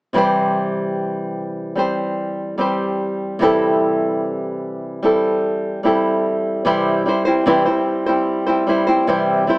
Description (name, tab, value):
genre	pop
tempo	74 BPM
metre	4/4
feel	straight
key	C major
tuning	A4 = 440 Hz
part	flamenco guitar	accompaniment	0.1-9.6 s	C3 to C5	-16 LUFS	equal	none
room	moderate plate reverb, RT60 2.7 s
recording	small speaker sound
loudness	-16 LUFS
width	side -24 dB against mid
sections	0.1-6.7 A section; 6.7-9.6 B section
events	none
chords	0.1 C; 3.4 Am7/C; 6.7 C